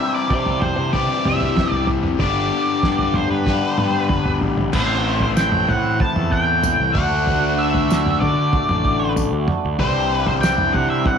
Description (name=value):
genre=psychedelic rock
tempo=95 BPM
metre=4/4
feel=straight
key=A dorian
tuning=A4 = 440 Hz
part: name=octave-fuzz lead guitar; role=melody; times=0.0-11.2 s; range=B4 to A5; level=-22 LUFS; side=right 1 dB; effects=distortion, tape echo
part: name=hand-pumped harmonium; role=sustained chords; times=0.0-11.2 s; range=E3 to F#4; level=-28 LUFS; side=right 12 dB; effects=none
part: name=crunchy overdriven guitar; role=riff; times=0.0-11.2 s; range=G2 to G4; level=-22 LUFS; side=left 11 dB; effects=phaser
part: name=fuzz fingered electric bass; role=bass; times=0.3-11.0 s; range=G1 to D3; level=-23 LUFS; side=right 1 dB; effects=overdrive
part: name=cloth-damped thuddy drum kit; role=drums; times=0.3-11.2 s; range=crash cymbal, kick drum, snare drum, toms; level=-22 LUFS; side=right 1 dB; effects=none
part: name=tambourine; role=percussion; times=5.4-10.6 s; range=none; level=-35 LUFS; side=left 16 dB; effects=none
room=moderate spring reverb, RT60 1.9 s, small room ambience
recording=1960s-style stereo with parts hard left and right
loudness=-16 LUFS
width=side -7 dB against mid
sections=0.0-4.7 A section; 4.7-11.2 B section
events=drum fill 3.5-4.7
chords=0.0 Cadd9; 2.2 G; 4.7 Am; 6.9 D; 9.8 Cadd9